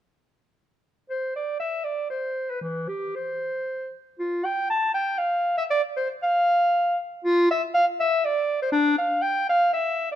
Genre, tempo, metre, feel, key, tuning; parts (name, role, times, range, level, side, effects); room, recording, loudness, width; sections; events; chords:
classical, baroque-style fantasia for unaccompanied clarinet; 119 BPM; 3/4; rubato; C major; A4 = 440 Hz
mellow clarinet; solo; 1.1-10.2 s; E3 to A5; -22 LUFS; equal
moderate recital hall reverb, RT60 1.6 s; close, detailed microphones; -22 LUFS; side -11 dB against mid
1.1-10.2 A section